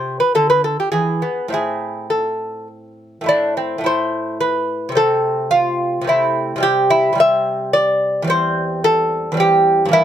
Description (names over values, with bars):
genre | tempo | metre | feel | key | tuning
classical, baroque-style dance for lute | 101-112 BPM | 3/4 | rubato | A minor | A4 = 440 Hz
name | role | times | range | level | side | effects
lute | solo | 0.0-10.0 s | E2 to E5 | -15 LUFS | equal | none
room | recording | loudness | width
little or no reverb | close, detailed microphones | -15 LUFS | side -10 dB against mid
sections
0.0-3.3 A section; 3.3-10.0 B section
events
none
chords
0.0 N.C.; 0.9 E; 1.5 Am; 5.0 Am/C; 6.6 C; 8.3 C/E